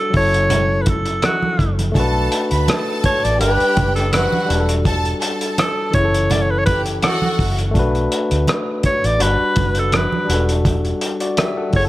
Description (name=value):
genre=lush 1970s-style soul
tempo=83 BPM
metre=4/4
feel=swing 54% on 16ths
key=B minor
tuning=A4 = 440 Hz
part: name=bright alto saxophone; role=melody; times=0.0-11.8 s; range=F#4 to D5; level=-19 LUFS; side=equal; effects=none
part: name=barky tine electric piano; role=accompaniment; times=0.0-11.9 s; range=C#3 to F#5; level=-22 LUFS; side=left 2 dB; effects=none
part: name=vintage muted fingered electric bass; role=bass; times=0.1-11.9 s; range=E1 to D2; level=-20 LUFS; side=equal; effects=none
part: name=cloth-damped thuddy drum kit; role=drums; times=0.1-11.9 s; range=hi-hat, kick drum, rim click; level=-21 LUFS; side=equal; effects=none
part: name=congas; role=percussion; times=0.5-11.6 s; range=none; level=-25 LUFS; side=right 4 dB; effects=none
part: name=rich studio violin section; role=second line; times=1.9-7.5 s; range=F#4 to B5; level=-24 LUFS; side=right 1 dB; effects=none
room=studio reverb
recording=none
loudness=-15 LUFS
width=side -16 dB against mid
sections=0.0-11.9 A section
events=none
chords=0.1 F#m7; 2.0 Bm7; 3.4 Gmaj7; 4.5 Em11; 5.9 F#m7; 7.8 Bm7; 9.2 Gmaj7; 10.3 Em11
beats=0.51 1.23 | 1.95 2.68 3.40 4.13 | 4.85 5.58 6.30 7.03 | 7.75 8.47 9.20 9.93 | 10.65 11.38